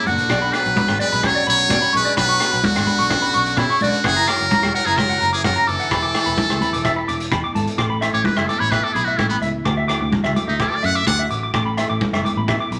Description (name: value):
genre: highlife guitar band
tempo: 128 BPM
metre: 4/4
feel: straight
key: A major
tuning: A4 = 440 Hz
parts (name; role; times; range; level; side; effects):
- trumpet with metal mute; melody; 0.0-11.2 s; B3 to F#5; -22 LUFS; equal; none
- clear trombone; second line; 0.0-7.3 s; C#3 to G#3; -32 LUFS; equal; none
- mellow electric guitar; accompaniment; 0.0-12.8 s; F#2 to A4; -32 LUFS; equal; none
- clean electric guitar; arpeggios; 0.0-12.8 s; D5 to D6; -25 LUFS; equal; none
- fingered electric bass; bass; 0.1-12.8 s; E1 to B2; -28 LUFS; equal; none
- vintage drum kit; drums; 0.1-12.8 s; hi-hat, kick drum, rim click; -28 LUFS; equal; none
- congas; percussion; 0.1-12.5 s; none; -27 LUFS; equal; none
- agogo bells; percussion; 0.3-12.6 s; none; -35 LUFS; equal; none
room: wet studio reverb, RT60 0.8 s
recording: none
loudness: -19 LUFS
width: mono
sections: 0.0-7.8 A section; 7.8-12.8 B section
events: muted trumpet solo 7.8-12.8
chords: 0.3 Bmadd9; 4.0 F#7; 5.9 Esus4; 7.8 Asus2; 9.7 Dadd9; 11.5 Asus2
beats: | 0.30 0.77 1.24 1.71 | 2.17 2.64 3.11 3.58 | 4.04 4.51 4.98 5.45 | 5.91 6.38 6.85 7.32 | 7.78 8.25 8.72 9.19 | 9.66 10.13 10.60 11.07 | 11.54 12.01 12.47